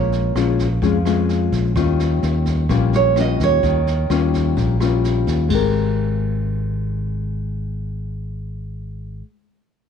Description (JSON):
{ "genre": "bossa nova", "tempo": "128 BPM", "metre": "4/4", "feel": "straight", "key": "Ab major", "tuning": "A4 = 441 Hz", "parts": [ { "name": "nylon-string guitar", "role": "melody", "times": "0.0-4.1 s", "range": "Db5 to Eb5", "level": "-19 LUFS", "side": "right 10 dB", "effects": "none" }, { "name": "nylon-string guitar", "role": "accompaniment", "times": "0.0-9.3 s", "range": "Bb2 to Bb4", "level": "-22 LUFS", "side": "left 10 dB", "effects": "none" }, { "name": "fingered electric bass", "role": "bass", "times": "0.0-9.2 s", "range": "Ab1 to F2", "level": "-20 LUFS", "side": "equal", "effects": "transformer saturation" }, { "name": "jazz brush drum kit", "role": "drums", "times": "0.1-5.6 s", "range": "crash cymbal, kick drum, rim click, snare drum", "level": "-28 LUFS", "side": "right 4 dB", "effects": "none" } ], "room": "moderate plate reverb, RT60 1.5 s, studio ambience", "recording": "1960s-style stereo with parts hard left and right", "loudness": "-17 LUFS", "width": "side -7 dB against mid", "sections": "0.0-5.5 A section; 5.5-9.3 B section", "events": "nylon-string guitar solo 0.0-5.5", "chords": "0.0 Bbm7; 1.8 Eb9; 5.5 Abmaj9" }